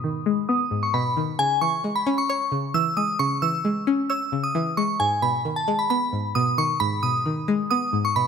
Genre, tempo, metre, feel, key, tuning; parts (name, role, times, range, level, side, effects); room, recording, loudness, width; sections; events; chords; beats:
hip hop; 133 BPM; 4/4; half-time; C# minor; A4 = 439 Hz
glassy synth bell; melody; 0.0-8.3 s; G#5 to E6; -23 LUFS; right 1 dB; chorus, low-pass filter
string-like resonator pluck; accompaniment; 0.0-8.3 s; G#2 to C#5; -25 LUFS; left 2 dB; chorus, phaser, low-pass filter
light reverb; -21 LUFS; side -6 dB against mid
0.0-8.3 A section
filter sweep 0.0-1.4
0.0 G#m; 1.4 C#m; 5.0 G#m
0.04 0.49 0.94 | 1.39 1.84 2.29 2.74 | 3.19 3.65 4.10 4.55 | 5.00 5.45 5.90 6.35 | 6.80 7.25 7.71 8.16